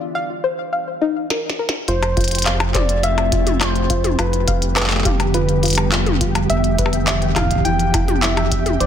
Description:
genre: IDM.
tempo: 104 BPM.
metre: 4/4.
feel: straight.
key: F lydian.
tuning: A4 = 440 Hz.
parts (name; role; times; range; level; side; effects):
soft round pluck; arpeggios; 0.1-8.9 s; Eb4 to F5; -24 LUFS; left 3 dB; chorus, ping-pong delay.
glitchy drum kit; drums; 1.3-8.9 s; handclaps, hi-hat, percussion blips, snare drum, toms; -21 LUFS; left 2 dB; digital delay.
soft struck synth lead; melody; 1.9-8.9 s; G4 to G5; -24 LUFS; left 1 dB; chorus, cassette tape, ping-pong delay.
glassy FM pad; sustained chords; 2.4-8.9 s; D3 to G4; -24 LUFS; equal; ensemble chorus, built-in reverb.
round analog bass; bass; 1.9-8.9 s; F1; -21 LUFS; equal; none.
flickering grainy texture; texture; 2.3-8.9 s; G4 to G5; -32 LUFS; right 2 dB; built-in reverb.
electronic kick drum; drums; 2.2-8.6 s; none; -22 LUFS; right 1 dB; none.
room: light reverb, digital ambience.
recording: dense, heavily limited modern master.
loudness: -16 LUFS.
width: side -9 dB against mid.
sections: 0.0-1.9 A section; 1.9-8.9 A section.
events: break 0.0-1.9; drum fill 1.3-1.9.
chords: 0.0 Eb5; 1.9 Fmaj7; 4.2 G/F; 6.5 Em7/F.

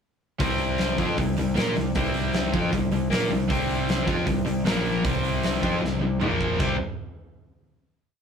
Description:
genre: hard rock.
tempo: 155 BPM.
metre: 4/4.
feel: straight.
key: unclear.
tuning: A4 = 440 Hz.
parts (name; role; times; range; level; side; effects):
sludgy distorted guitar; riff; 0.4-6.8 s; Bb2 to Bb4; -25 LUFS; left 3 dB; overdrive.
tight distorted guitar; riff; 0.4-6.8 s; Bb2 to Bb4; -31 LUFS; right 8 dB; distortion.
picked electric bass; bass; 0.4-6.8 s; Bb1 to Bb2; -32 LUFS; right 1 dB; none.
big rock drum kit; drums; 0.4-6.7 s; crash cymbal, hi-hat, kick drum, snare drum, toms; -27 LUFS; right 1 dB; none.
room: moderate studio reverb, RT60 0.6 s.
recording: rough rehearsal-room recording.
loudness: -22 LUFS.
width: side -7 dB against mid.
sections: 0.4-6.6 riff; 6.6-8.2 final chord.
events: drum fill 5.8-6.6.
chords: 0.4 C5; 4.7 Bb5; 5.0 C5; 6.2 Bb5; 6.6 C5.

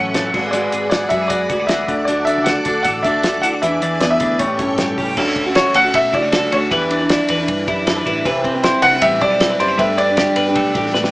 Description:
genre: jangly indie pop.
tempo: 156 BPM.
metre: 4/4.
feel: straight.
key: D lydian, D major from 5.2 s.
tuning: A4 = 440 Hz.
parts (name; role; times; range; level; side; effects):
warm upright piano; melody; 0.0-11.1 s; B4 to F#5; -17 LUFS; equal; none.
picked steel-string acoustic guitar; accompaniment; 0.0-11.1 s; A2 to D5; -22 LUFS; right 1 dB; none.
string machine, violins; sustained chords; 0.0-5.2 s; G#4 to D6; -26 LUFS; equal; ensemble chorus.
twelve-string electric guitar; arpeggios; 0.0-11.1 s; F#2 to B4; -20 LUFS; equal; none.
hollow-body short-scale picked electric bass; bass; 0.0-11.1 s; F#1 to G2; -30 LUFS; equal; none.
cloth-damped thuddy drum kit; drums; 0.1-11.1 s; crash cymbal, hi-hat, kick drum, ride cymbal, snare drum; -22 LUFS; equal; none.
room: moderate small room reverb, RT60 0.5 s.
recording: band playing live in one room, small speaker sound.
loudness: -14 LUFS.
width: side -21 dB against mid.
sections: 0.0-5.2 A section; 5.2-11.1 B section.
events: drum fill 10.9.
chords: 0.3 G#m7b5; 1.9 D; 3.6 E7; 4.4 A7; 5.2 Dmaj7; 6.7 Em7; 8.3 Cmaj7; 9.8 Gadd9.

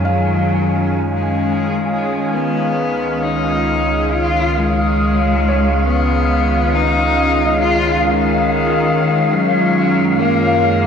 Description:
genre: ambient.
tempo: 68 BPM.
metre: 4/4.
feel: straight.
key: unclear.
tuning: A4 = 440 Hz.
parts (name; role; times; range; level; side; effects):
rich cello; melody; 0.0-10.9 s; D#3 to E#4; -18 LUFS; left 4 dB; cassette tape, shimmer reverb, tape echo.
evolving wavetable pad; sustained chords; 0.0-10.9 s; D#3 to E#5; -18 LUFS; right 1 dB; chorus, built-in reverb, cassette tape, shimmer reverb.
felt-muted upright piano; arpeggios; 0.0-10.9 s; C#5 to E#5; -28 LUFS; right 2 dB; none.
round analog bass; bass; 0.0-10.9 s; C#2 to F#2; -21 LUFS; right 1 dB; none.
organ-like drone; drone; 0.0-10.9 s; G#3 to E#4; -27 LUFS; equal; ensemble chorus, built-in reverb, cassette tape.
wind-like tuned noise texture; texture; 0.0-10.9 s; E#5 to G#5; -24 LUFS; left 3 dB; built-in reverb, cassette tape, shimmer reverb.
room: wet lush hall reverb, RT60 2.2 s.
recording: home recording on cassette.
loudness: -14 LUFS.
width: side -7 dB against mid.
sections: 0.0-10.9 A section.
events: fade-in on synth drone 0.0-10.9; fade-in on synth texture 0.0-10.9; fade-in on cello 0.0-10.9.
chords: 0.0 F#sus2; 2.3 C#9; 9.3 F#maj9.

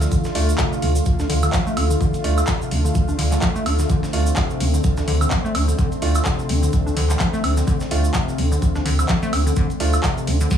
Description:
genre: acid house.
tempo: 127 BPM.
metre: 4/4.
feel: swing 57% on 16ths.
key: D minor.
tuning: A4 = 440 Hz.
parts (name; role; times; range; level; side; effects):
lush unison pad; sustained chords; 0.0-10.6 s; D3 to F4; -25 LUFS; left 2 dB; chorus, sidechain pumping.
deep acid bass; riff; 0.0-10.6 s; C3 to D4; -25 LUFS; left 1 dB; dub echo.
warm sub bass; bass; 0.0-10.6 s; D2; -20 LUFS; right 1 dB; sidechain pumping.
breakbeat sampler-style drum kit; drums; 0.0-10.6 s; hi-hat, snare drum; -35 LUFS; right 1 dB; high-pass filter on snare, sidechain pumping on hats, high-pass filter on hats.
tube shaker; percussion; 0.0-10.6 s; none; -35 LUFS; right 3 dB; none.
electronic kick drum; drums; 0.1-10.6 s; none; -23 LUFS; equal; none.
dark grand piano; stabs; 0.4-9.9 s; A3 to F4; -31 LUFS; right 3 dB; dub echo.
booming analog drum machine; drums; 0.4-10.6 s; handclaps, hi-hat, snare drum, woodblock; -26 LUFS; equal; none.
room: light reverb.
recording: studio reverb.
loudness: -17 LUFS.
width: side -9 dB against mid.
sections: 0.0-10.6 A section.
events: filter sweep on acid bass 0.0-10.6.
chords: 0.0 Dm.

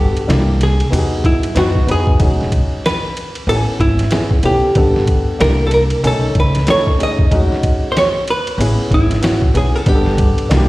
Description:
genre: hip hop, jazz-hop.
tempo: 94 BPM.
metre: 4/4.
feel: swing 60% on 16ths.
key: E major.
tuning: A4 = 441 Hz.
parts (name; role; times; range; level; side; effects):
archtop guitar, miked and amplified; melody; 0.0-10.7 s; E4 to D#5; -18 LUFS; right 1 dB; slapback echo.
dark upright piano; accompaniment; 0.0-10.7 s; G#3 to G#5; -20 LUFS; left 1 dB; slapback echo.
upright bass; bass; 0.0-10.7 s; E1 to F#2; -16 LUFS; equal; none.
boom bap sampler-style drum kit; drums; 0.2-10.7 s; hi-hat, kick drum, ride cymbal, snare drum; -17 LUFS; equal; none.
room: digital ambience.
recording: live gig heard through the venue's PA, recital hall reverb, vinyl crackle.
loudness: -12 LUFS.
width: side -18 dB against mid.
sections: 0.0-2.2 A section; 2.2-10.7 A section.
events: none.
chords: 0.3 C9; 0.9 Emaj9; 2.2 Emaj13; 3.5 Amaj9; 4.8 Gmaj9; 5.4 C9; 6.0 B13; 7.3 Emaj13; 8.6 Amaj9 (rootless); 9.9 Gmaj9.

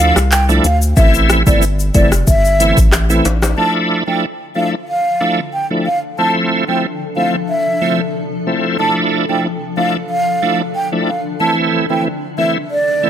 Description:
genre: dancehall.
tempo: 92 BPM.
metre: 4/4.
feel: straight.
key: D minor.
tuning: A4 = 442 Hz.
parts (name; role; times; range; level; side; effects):
breathy mellow concert flute; melody; 0.0-13.1 s; D5 to A5; -18 LUFS; right 1 dB; digital delay.
bright tonewheel organ; accompaniment; 0.0-13.1 s; E3 to E4; -17 LUFS; right 1 dB; overdrive, chorus vibrato, slow rotary speaker.
saturated sub bass; bass; 0.0-3.5 s; F1 to D2; -15 LUFS; equal; none.
afro-pop drum kit; drums; 0.2-3.6 s; handclaps, hi-hat, kick drum, rim click, shaker; -14 LUFS; equal; none.
tube shaker and timbales; percussion; 0.2-3.6 s; none; -25 LUFS; left 4 dB; none.
granular cloud pad; sustained chords; 5.1-13.1 s; C3 to A4; -24 LUFS; left 4 dB; built-in reverb, sidechain pumping.
room: light reverb.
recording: none.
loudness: -12 LUFS.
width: side -10 dB against mid.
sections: 0.0-3.6 A section; 3.6-13.1 B section.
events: none.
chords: 0.0 Dmadd9; 1.0 Am; 3.6 Dmadd9; 6.2 Fmaj7; 8.8 Dmadd9; 11.4 Am.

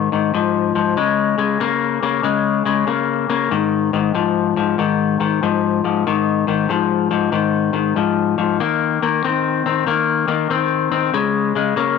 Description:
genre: blues.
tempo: 94 BPM.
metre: 4/4.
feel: swing 66% on 8ths.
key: Ab major.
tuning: A4 = 440 Hz.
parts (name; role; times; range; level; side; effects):
electric guitar at the edge of break-up; solo; 0.0-12.0 s; Ab2 to C4; -16 LUFS; left 8 dB; none.
room: moderate spring reverb, RT60 2.0 s, digital ambience.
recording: none.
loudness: -16 LUFS.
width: side -5 dB against mid.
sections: 0.0-12.0 A section.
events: none.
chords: 0.0 Ab5; 1.0 Db5; 3.5 Ab5; 8.6 Eb5; 11.2 Db5.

